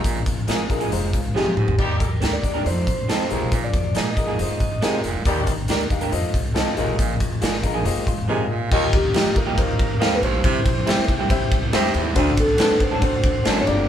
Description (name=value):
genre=uptempo 1960s-style soul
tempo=139 BPM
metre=4/4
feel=straight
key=Eb major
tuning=A4 = 441 Hz
part: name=warm grand piano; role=accompaniment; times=0.0-13.9 s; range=G2 to C6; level=-26 LUFS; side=left 4 dB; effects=none
part: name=breathy baritone saxophone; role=riff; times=0.0-13.8 s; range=D2 to C3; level=-28 LUFS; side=right 6 dB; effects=none
part: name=upright bass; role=bass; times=0.0-13.9 s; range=F1 to Bb2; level=-28 LUFS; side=equal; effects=none
part: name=raw garage drum kit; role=drums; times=0.0-13.8 s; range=crash cymbal, hi-hat, kick drum, ride cymbal, snare drum, toms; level=-22 LUFS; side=equal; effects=none
part: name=electric guitar through a small old amp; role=riff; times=0.5-1.5, 7.6-8.5 s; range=Ab3 to Bb4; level=-32 LUFS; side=left 4 dB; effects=none
part: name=electric guitar through a small old amp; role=stabs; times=0.5-13.6 s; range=F3 to Bb4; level=-27 LUFS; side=right 4 dB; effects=none
part: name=mellow tonewheel organ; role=melody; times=1.4-5.0, 8.9-13.9 s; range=G4 to Eb5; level=-25 LUFS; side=equal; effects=slow rotary speaker, tape echo
part: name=warm horn section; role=second line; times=1.8-2.1, 5.3-5.6 s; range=G3 to G4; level=-30 LUFS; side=left 1 dB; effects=none
part: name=tonewheel organ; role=sustained chords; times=8.7-13.9 s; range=D3 to G4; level=-31 LUFS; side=equal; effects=fast rotary speaker
room=light reverb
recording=band playing live in one room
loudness=-18 LUFS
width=side -10 dB against mid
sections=0.0-8.7 A section; 8.7-13.9 B section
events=drum fill 1.4-1.8; grand piano fill 7.9-8.7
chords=0.0 Bb7sus4; 0.9 Fm7; 1.8 Ebmaj7; 2.7 F7; 3.3 Bb7sus4; 4.4 Fm7; 5.3 Ebmaj7; 6.1 F7; 6.8 Bb7sus4; 7.9 Fm7; 8.3 Bb7sus4; 8.7 Ebadd9; 10.4 C; 12.2 D7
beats=| 0.05 0.48 0.92 1.35 | 1.79 2.22 2.65 3.09 | 3.52 3.96 4.39 4.82 | 5.26 5.69 6.12 6.55 | 6.99 7.42 7.85 8.28 | 8.71 9.15 9.58 10.01 | 10.44 10.87 11.30 11.73 | 12.16 12.59 13.03 13.46